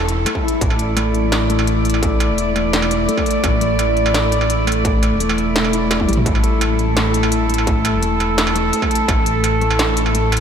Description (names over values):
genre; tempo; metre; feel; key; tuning
half-time drum and bass; 170 BPM; 4/4; half-time; unclear; A4 = 439 Hz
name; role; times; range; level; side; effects
dark studio cello section; sustained chords; 0.0-10.4 s; A3 to D5; -19 LUFS; right 1 dB; sidechain pumping
mellow electric guitar; arpeggios; 0.0-10.4 s; G3 to E4; -24 LUFS; left 3 dB; vintage 12-bit sampler grit, ping-pong delay
dark detuned saw bass; bass; 0.0-10.4 s; E1 to A1; -20 LUFS; equal; none
industrial drum kit; drums; 0.0-10.4 s; hi-hat, snare drum, struck metal, toms; -22 LUFS; right 1 dB; none
electronic kick drum; drums; 0.4-9.2 s; none; -20 LUFS; equal; distortion
room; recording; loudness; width
wet huge ambient reverb, RT60 7.4 s; dreamy mix soaked in reverb; -14 LUFS; side -8 dB against mid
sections
0.0-10.4 A section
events
drum fill 5.9-6.3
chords
0.0 A5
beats
0.26 | 0.61 0.97 1.32 1.67 | 2.03 2.38 2.73 3.08 | 3.44 3.79 4.14 4.50 | 4.85 5.20 5.56 5.91 | 6.26 6.62 6.97 7.32 | 7.67 8.03 8.38 8.73 | 9.09 9.44 9.79 10.14